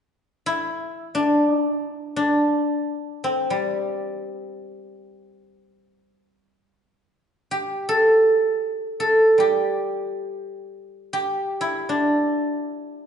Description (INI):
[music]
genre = chinese traditional, Chinese solo plucked strings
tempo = free time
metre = none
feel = none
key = unclear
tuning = A4 = 440 Hz
[part]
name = guzheng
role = solo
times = 0.5-13.1 s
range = G3 to A4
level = -20 LUFS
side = equal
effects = none
[sound]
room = moderate recital hall reverb, RT60 1.6 s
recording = recorded in a church or concert hall, nothing above 10.8 kHz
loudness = -20 LUFS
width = side -8 dB against mid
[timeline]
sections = 0.0-13.1 A section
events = none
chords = none